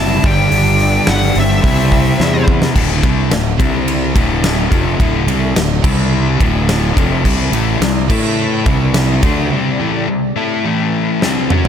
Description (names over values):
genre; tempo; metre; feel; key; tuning
hard rock; 107 BPM; 4/4; straight; unclear; A4 = 440 Hz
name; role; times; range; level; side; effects
high-gain lead guitar; melody; 0.0-2.4 s; E5 to A5; -18 LUFS; left 1 dB; distortion
octave-fuzz lead guitar; second line; 0.0-2.4 s; C4 to E4; -25 LUFS; right 1 dB; distortion
hollow soft pad; sustained chords; 0.0-11.7 s; G3 to E5; -29 LUFS; equal; none
overdriven electric guitar; riff; 0.0-11.7 s; D2 to A4; -18 LUFS; left 11 dB; none
sludgy distorted guitar; riff; 0.0-11.7 s; D2 to A4; -20 LUFS; right 11 dB; overdrive
fuzz fingered electric bass; bass; 0.0-9.5 s; D1 to A2; -17 LUFS; equal; overdrive
huge arena drum kit; drums; 0.2-11.7 s; crash cymbal, hi-hat, kick drum, ride cymbal, snare drum, toms; -17 LUFS; equal; none
room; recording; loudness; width
small room ambience; none; -12 LUFS; side -8 dB against mid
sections
0.0-2.8 A section; 2.8-11.7 B section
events
drum fill 2.2-2.8, 11.2-11.7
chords
0.2 G5; 1.6 C; 2.8 D5; 3.6 C5; 4.2 D5; 5.8 C5; 6.4 D5; 7.2 C5; 8.1 A5; 8.7 C5; 10.7 A5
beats
| 0.52 1.08 1.64 2.19 | 2.75 3.31 3.87 4.43 | 5.00 5.56 6.12 6.68 | 7.25 7.82 8.38 8.95 | 9.52 10.09 10.65 11.22